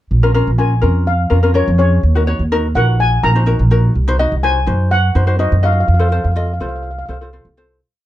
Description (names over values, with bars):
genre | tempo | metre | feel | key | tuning
calypso | 125 BPM | 4/4 | straight | Bb minor | A4 = 440 Hz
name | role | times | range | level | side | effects
upright bass | bass | 0.1-7.8 s | Bb1 to Gb2 | -14 LUFS | equal | none
ukulele | accompaniment | 0.2-7.8 s | Db4 to Eb5 | -20 LUFS | left 2 dB | none
steel pan | melody | 0.6-7.2 s | Db5 to Bb5 | -19 LUFS | left 2 dB | none
room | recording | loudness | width
light reverb | dark, warm production | -12 LUFS | side -14 dB against mid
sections
0.1-7.8 verse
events
fade-out 5.9-7.8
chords
0.1 Bbm7; 2.0 Ebm7; 4.0 Cdim; 5.9 F